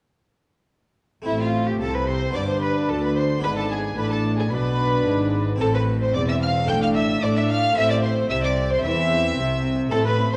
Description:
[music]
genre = classical, baroque-style concerto movement with solo episodes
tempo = 111 BPM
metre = 4/4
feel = straight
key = A minor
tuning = A4 = 440 Hz
[part]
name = harpsichord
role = accompaniment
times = 1.2-10.4 s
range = D2 to A4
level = -34 LUFS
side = equal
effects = none
[part]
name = rich chamber violin section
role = melody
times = 1.3-10.4 s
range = E5 to G6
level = -34 LUFS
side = equal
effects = none
[part]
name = rich violin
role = melody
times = 1.3-10.4 s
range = E4 to G5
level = -29 LUFS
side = equal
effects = none
[part]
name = warm chamber violin section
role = second line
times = 1.3-10.4 s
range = E4 to G5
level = -30 LUFS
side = equal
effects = none
[part]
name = dark chamber viola section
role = accompaniment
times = 1.3-10.3 s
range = C4 to D4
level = -30 LUFS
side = equal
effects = none
[part]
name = warm chamber cello section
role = bass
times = 1.3-10.4 s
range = D2 to A3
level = -29 LUFS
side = equal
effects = none
[part]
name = warm studio double bass section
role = bass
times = 1.3-10.4 s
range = E1 to A2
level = -29 LUFS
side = equal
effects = none
[sound]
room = moderate recital hall reverb, RT60 1.4 s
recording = worn, warbling old tape, cassette tape, warbly pitch drift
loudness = -22 LUFS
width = mono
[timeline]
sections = 1.3-10.4 A section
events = none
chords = 1.3 Am; 2.4 G; 3.4 E7/G#; 5.6 Am; 6.7 D5/A; 7.8 Am

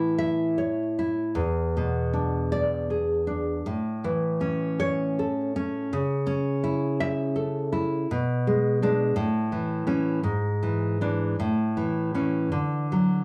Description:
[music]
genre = romantic piece for solo classical guitar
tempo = 49-57 BPM (dotted quarters)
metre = 6/8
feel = rubato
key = A major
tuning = A4 = 440 Hz
[part]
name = nylon-string guitar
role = solo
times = 0.0-13.2 s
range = E2 to E5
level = -26 LUFS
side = equal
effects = none
[sound]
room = moderate studio reverb, RT60 0.5 s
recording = small room ambience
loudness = -26 LUFS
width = mono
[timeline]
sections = 0.0-13.2 A section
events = none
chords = 0.0 A; 1.4 E7; 3.7 A; 5.9 A/C#; 8.1 Bm6; 9.2 A; 10.2 E7/G#; 11.4 A; 12.5 D

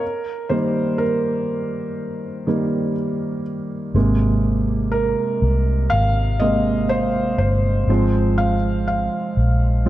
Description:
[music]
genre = pop ballad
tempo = 61 BPM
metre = 4/4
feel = straight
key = Ab major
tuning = A4 = 440 Hz
[part]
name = felt-muted upright piano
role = accompaniment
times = 0.0-9.9 s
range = C3 to F5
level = -20 LUFS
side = right 1 dB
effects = none
[part]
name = vintage muted fingered electric bass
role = bass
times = 3.9-9.9 s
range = G1 to C2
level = -19 LUFS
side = equal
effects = none
[sound]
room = light reverb, studio reverb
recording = dark, warm production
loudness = -18 LUFS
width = side -14 dB against mid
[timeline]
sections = 0.0-9.9 A section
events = felt piano solo 0.0-9.9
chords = 0.0 Eb; 4.0 Abadd9; 7.9 Fm/Ab

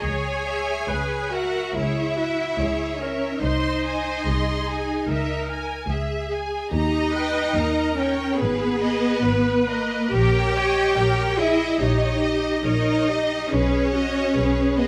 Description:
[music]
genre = classical, slow romantic movement for string orchestra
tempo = 71 BPM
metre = 4/4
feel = uneven beats, rubato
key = G# minor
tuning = A4 = 440 Hz
[part]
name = rich studio violin section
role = melody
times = 0.0-14.9 s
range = B4 to B#5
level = -33 LUFS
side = equal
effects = none
[part]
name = rich studio violin section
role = second line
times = 0.0-14.9 s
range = A#4 to G#5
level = -31 LUFS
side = equal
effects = none
[part]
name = rich studio viola section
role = accompaniment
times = 0.0-14.9 s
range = F#4 to C#5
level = -31 LUFS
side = equal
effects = none
[part]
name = rich studio cello section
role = bass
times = 0.0-14.9 s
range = A#3 to G#4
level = -26 LUFS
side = equal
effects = none
[part]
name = rich studio double bass section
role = bass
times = 0.0-14.9 s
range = G#1 to D#2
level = -29 LUFS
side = equal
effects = none
[sound]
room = light reverb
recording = none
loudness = -23 LUFS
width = mono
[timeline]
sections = 0.0-14.9 A section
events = none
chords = 0.0 C#m; 3.4 G#/B#; 5.1 C#m; 6.7 D#7; 8.4 G#m; 10.1 D#7/A#; 13.5 G#m/B

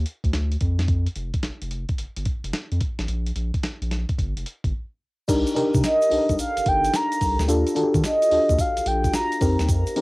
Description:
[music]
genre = R&B, new jack swing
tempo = 109 BPM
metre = 4/4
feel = swing 66% on 16ths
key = C dorian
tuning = A4 = 441 Hz
[part]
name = round analog bass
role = bass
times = 0.0-10.0 s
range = F1 to F3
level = -24 LUFS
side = equal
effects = none
[part]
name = dusty soul sampler-style drum kit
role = drums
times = 0.1-10.0 s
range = crash cymbal, hi-hat, kick drum, snare drum, tambourine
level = -26 LUFS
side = equal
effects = cassette tape
[part]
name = FM electric piano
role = accompaniment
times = 5.3-10.0 s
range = C4 to Bb4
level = -24 LUFS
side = left 1 dB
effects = chorus, cassette tape
[part]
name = egg shaker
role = percussion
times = 5.3-10.0 s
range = none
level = -38 LUFS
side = right 3 dB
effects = none
[part]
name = mellow horn-like synth lead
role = melody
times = 5.8-9.6 s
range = Eb5 to Bb5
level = -22 LUFS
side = right 1 dB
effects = chorus, cassette tape
[sound]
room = moderate booth ambience, RT60 0.2 s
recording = home recording on cassette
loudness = -20 LUFS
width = side -22 dB against mid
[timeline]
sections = 0.0-5.3 A section; 5.3-10.0 B section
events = break 4.7-5.3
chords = 0.0 N.C.; 4.2 Fsus2; 5.3 Cm9; 7.5 Ebmaj9#11; 9.4 F7sus4

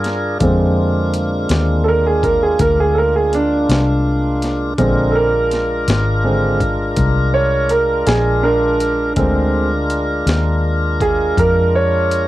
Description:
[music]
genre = slow blues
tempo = 55 BPM (dotted quarters)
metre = 12/8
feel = straight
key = Bb mixolydian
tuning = A4 = 440 Hz
[part]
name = clear concert grand piano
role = accompaniment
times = 0.0-12.3 s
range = D3 to D5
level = -17 LUFS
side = right 2 dB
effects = cassette tape
[part]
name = tonewheel organ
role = sustained chords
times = 0.0-12.3 s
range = Ab3 to Bb4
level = -20 LUFS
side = left 1 dB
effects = overdrive, slow rotary speaker, cassette tape
[part]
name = vintage muted fingered electric bass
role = bass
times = 0.0-12.3 s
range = Ab1 to G2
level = -18 LUFS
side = left 1 dB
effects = none
[part]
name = breakbeat sampler-style drum kit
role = drums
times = 0.0-12.3 s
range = hi-hat, kick drum, snare drum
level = -22 LUFS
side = left 1 dB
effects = none
[sound]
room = little or no reverb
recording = home recording on cassette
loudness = -13 LUFS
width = side -15 dB against mid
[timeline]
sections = 0.0-12.3 A section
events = grand piano solo 0.0-12.3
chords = 0.0 Bb7

